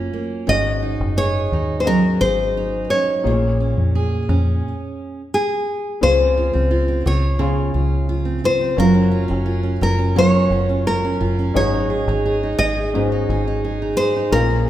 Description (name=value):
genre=acoustic pop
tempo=87 BPM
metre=4/4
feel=straight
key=Db major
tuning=A4 = 435 Hz
part: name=fingerpicked steel-string acoustic guitar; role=accompaniment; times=0.0-14.7 s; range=Ab2 to Ab4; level=-21 LUFS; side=right 3 dB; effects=none
part: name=deep dub fingered electric bass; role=bass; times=0.0-14.7 s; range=Gb1 to F2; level=-21 LUFS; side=equal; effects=none
part: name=nylon-string guitar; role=melody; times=0.5-14.7 s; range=Ab4 to Eb5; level=-20 LUFS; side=left 1 dB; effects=none
part: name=felt-muted upright piano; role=accompaniment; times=0.5-14.7 s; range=Bb3 to C6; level=-27 LUFS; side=left 6 dB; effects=none
room=moderate recital hall reverb, RT60 1.8 s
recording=recorded in a church or concert hall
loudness=-16 LUFS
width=side -12 dB against mid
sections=0.0-6.0 A section; 6.0-14.7 B section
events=stop 4.6-6.0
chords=0.5 Ab7sus4; 3.2 Bbm7; 6.0 Dbmaj7; 8.8 Gbmaj7; 11.6 Ab7sus4